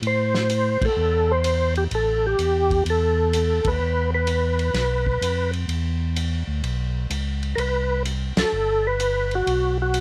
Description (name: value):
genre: soul jazz organ trio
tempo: 127 BPM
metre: 4/4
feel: swing 67% on 8ths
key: E minor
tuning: A4 = 439 Hz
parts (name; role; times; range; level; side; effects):
- tonewheel organ; bass; 0.0-10.0 s; G1 to A2; -26 LUFS; equal; overdrive, chorus vibrato, slow rotary speaker
- warm soul drum kit; drums; 0.0-10.0 s; hi-hat, kick drum, ride cymbal, snare drum; -32 LUFS; equal; none
- percussive tonewheel organ; melody; 0.1-10.0 s; F#4 to C5; -24 LUFS; equal; slow rotary speaker, overdrive, chorus vibrato
room: little or no reverb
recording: close, detailed microphones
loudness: -22 LUFS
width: mono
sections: 0.0-10.0 A section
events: band accent 0.7, 3.6, 8.3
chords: 0.0 Am7; 3.8 E5; 7.6 C5; 9.5 B5